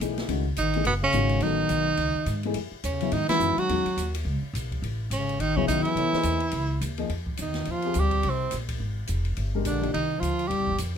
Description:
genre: modal jazz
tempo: 211 BPM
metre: 4/4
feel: swing 60% on 8ths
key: F dorian from 7.1 s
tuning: A4 = 439 Hz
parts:
  - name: dark baby grand piano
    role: accompaniment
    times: 0.0-11.0 s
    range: C#3 to D#5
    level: -30 LUFS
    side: left 6 dB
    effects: none
  - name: upright bass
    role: bass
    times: 0.0-11.0 s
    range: F1 to G#2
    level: -29 LUFS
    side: equal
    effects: none
  - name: open jazz drum kit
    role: drums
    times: 0.0-10.9 s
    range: hi-hat, kick drum, ride cymbal, snare drum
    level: -36 LUFS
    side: left 1 dB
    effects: none
  - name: bright tenor saxophone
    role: melody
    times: 0.6-10.8 s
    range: B3 to G4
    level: -26 LUFS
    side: right 4 dB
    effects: none
  - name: warm bass clarinet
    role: second line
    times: 0.6-10.8 s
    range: B2 to G3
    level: -31 LUFS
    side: left 7 dB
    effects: none
room: light reverb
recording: close, detailed microphones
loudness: -24 LUFS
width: side -8 dB against mid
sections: 0.0-7.1 A section; 7.1-11.0 B section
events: band accent 3.3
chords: 0.0 F#m69; 2.6 Aadd9; 6.0 C7alt; 7.1 Fm9; 9.4 Cm

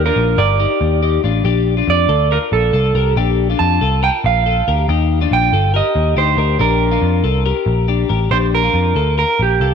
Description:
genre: jangly indie pop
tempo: 140 BPM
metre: 4/4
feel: straight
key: Bb major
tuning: A4 = 440 Hz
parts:
  - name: electric guitar through a small old amp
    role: melody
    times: 0.0-9.7 s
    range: G4 to A5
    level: -17 LUFS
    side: right 8 dB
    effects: spring reverb, slapback echo
  - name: twelve-string electric guitar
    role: arpeggios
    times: 0.0-9.7 s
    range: D4 to Bb4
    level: -19 LUFS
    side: left 13 dB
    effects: slapback echo
  - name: vintage muted picked electric bass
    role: bass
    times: 0.0-9.7 s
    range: G1 to F2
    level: -16 LUFS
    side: left 1 dB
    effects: none
room: light reverb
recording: 1960s-style stereo with parts hard left and right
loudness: -13 LUFS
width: side -7 dB against mid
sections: 0.0-8.3 A section; 8.3-9.7 B section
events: none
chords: 0.0 Ebmaj7; 1.4 Bbmaj7; 4.9 Ebmaj7; 6.6 Bb6; 8.3 Bbmaj7

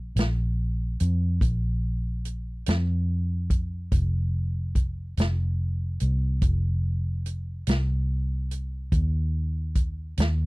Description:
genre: slow blues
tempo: 48 BPM (dotted quarters)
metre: 12/8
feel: straight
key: unclear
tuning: A4 = 440 Hz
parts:
  - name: vintage muted fingered electric bass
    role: bass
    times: 0.0-10.5 s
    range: F1 to F2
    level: -25 LUFS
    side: equal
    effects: none
  - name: vintage drum kit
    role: drums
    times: 0.2-10.4 s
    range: hi-hat, kick drum, snare drum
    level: -25 LUFS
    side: equal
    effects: none
room: little or no reverb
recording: dry, close 1970s-style studio recording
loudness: -24 LUFS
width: side -23 dB against mid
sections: 0.0-10.5 A section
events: none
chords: none

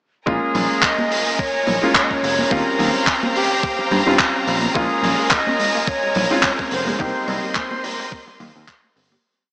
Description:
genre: nu-disco, nu disco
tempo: 107 BPM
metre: 4/4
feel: swing 55% on 16ths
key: Bb dorian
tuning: A4 = 438 Hz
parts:
  - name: silver concert flute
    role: melody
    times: 0.3-8.4 s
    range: G4 to Eb5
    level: -22 LUFS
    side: equal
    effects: analog delay
  - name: clear grand piano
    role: accompaniment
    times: 0.3-8.5 s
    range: G3 to G4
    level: -23 LUFS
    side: equal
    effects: vintage 12-bit sampler grit, sidechain pumping, analog delay
  - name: clear symphonic string section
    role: sustained chords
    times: 0.3-9.2 s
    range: Bb4 to C6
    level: -25 LUFS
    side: equal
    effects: sidechain pumping
  - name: picked electric bass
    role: bass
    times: 0.3-9.2 s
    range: F1 to G2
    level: -24 LUFS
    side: equal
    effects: none
  - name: electronic kick drum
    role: drums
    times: 0.3-8.8 s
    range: none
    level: -25 LUFS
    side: equal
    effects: none
  - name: damped 70s drum kit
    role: drums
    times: 0.5-9.1 s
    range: handclaps, hi-hat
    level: -21 LUFS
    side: equal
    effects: none
  - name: congas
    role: percussion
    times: 0.6-9.2 s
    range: none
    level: -29 LUFS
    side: equal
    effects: none
  - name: wide unison pluck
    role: arpeggios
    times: 4.8-9.2 s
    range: G3 to Db4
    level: -32 LUFS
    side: equal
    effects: none
room: wet huge ambient reverb, RT60 7.7 s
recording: dreamy mix soaked in reverb, small speaker sound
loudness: -16 LUFS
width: side -24 dB against mid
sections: 0.3-9.2 groove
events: fade-out 6.3-9.2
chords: 0.3 Bbm7; 2.5 Eb13 (rootless); 4.8 Bbm7; 7.0 Cm7

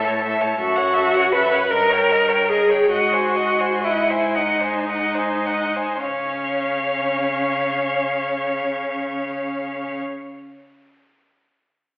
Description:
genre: classical, slow romantic movement for string quartet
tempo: 33-57 BPM (dotted quarters)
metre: 6/8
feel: rubato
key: unclear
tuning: A4 = 440 Hz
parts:
  - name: rich violin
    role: melody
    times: 0.0-10.0 s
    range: D#5 to A5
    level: -24 LUFS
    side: left 1 dB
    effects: none
  - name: clear violin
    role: second line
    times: 0.0-10.0 s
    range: A4 to D#5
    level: -24 LUFS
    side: left 1 dB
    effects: none
  - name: rich cello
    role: bass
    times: 0.0-10.0 s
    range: F#2 to C#3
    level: -29 LUFS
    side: equal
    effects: none
  - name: warm viola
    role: accompaniment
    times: 0.6-10.0 s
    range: C#4 to B4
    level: -21 LUFS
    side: equal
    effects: none
room: wet recital hall reverb, RT60 1.4 s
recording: heard from further back in the room, telephone sound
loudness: -18 LUFS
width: side -27 dB against mid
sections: 0.0-6.0 A section; 6.0-12.0 B section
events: slowing down 0.0-6.0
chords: 0.0 A; 0.6 F#m7; 1.7 D#7/G; 2.9 G#7; 6.0 C#

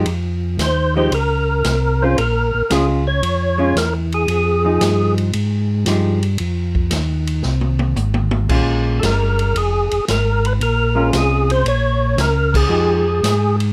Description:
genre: soul jazz organ trio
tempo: 114 BPM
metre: 4/4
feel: swing 69% on 8ths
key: F minor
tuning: A4 = 439 Hz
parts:
  - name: hollow-body jazz guitar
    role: accompaniment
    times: 0.0-13.0 s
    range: F3 to G4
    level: -23 LUFS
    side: equal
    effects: none
  - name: tonewheel organ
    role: bass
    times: 0.0-13.7 s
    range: F1 to Ab2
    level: -20 LUFS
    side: equal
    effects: chorus vibrato, slow rotary speaker
  - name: swinging big-band drum kit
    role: drums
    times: 0.1-13.7 s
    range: crash cymbal, hi-hat, kick drum, ride cymbal, snare drum, toms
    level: -27 LUFS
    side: equal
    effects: none
  - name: percussive tonewheel organ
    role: melody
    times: 0.6-5.1, 9.0-13.6 s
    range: Ab4 to Db5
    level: -21 LUFS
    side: equal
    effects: slow rotary speaker, overdrive, chorus vibrato
room: light reverb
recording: none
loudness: -17 LUFS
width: mono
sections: 0.1-13.7 A section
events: drum fill 7.4-8.5; band accent 12.4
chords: 0.1 Fm7; 2.2 Bbm7; 4.3 Fm9; 8.5 Bbm7; 12.7 Fm9

